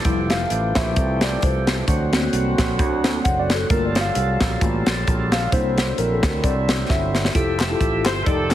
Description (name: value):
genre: uptempo gospel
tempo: 132 BPM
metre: 4/4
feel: swing 56% on 8ths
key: F major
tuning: A4 = 440 Hz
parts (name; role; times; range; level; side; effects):
- overdriven tonewheel organ; sustained chords; 0.0-8.5 s; D3 to E5; -26 LUFS; right 2 dB; slow rotary speaker
- crisp fusion drum kit; drums; 0.0-8.5 s; hi-hat, kick drum, snare drum; -21 LUFS; equal; none
- mellow tine electric piano; accompaniment; 0.1-8.5 s; G3 to F#5; -24 LUFS; left 2 dB; medium stereo tremolo
- fingered electric bass; bass; 0.1-8.5 s; F1 to D2; -24 LUFS; equal; none
- group handclap; percussion; 7.6-8.5 s; none; -29 LUFS; left 3 dB; none
- clear saxophone section; melody; 8.0-8.5 s; C4 to C5; -24 LUFS; equal; none
room: light reverb, small room ambience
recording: heavily compressed radio sound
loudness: -18 LUFS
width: side -12 dB against mid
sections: 0.0-7.3 A section; 7.3-8.5 B section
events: tine electric piano solo 0.0-7.3; drum fill 6.9-7.3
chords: 0.0 Fmaj9; 1.9 D7b13; 3.7 Gm9; 5.5 C9; 7.3 Fmaj9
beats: | 0.05 0.51 0.96 1.42 | 1.88 2.33 2.79 3.25 | 3.70 4.16 4.61 5.07 | 5.53 5.98 6.44 6.89 | 7.35 7.80 8.26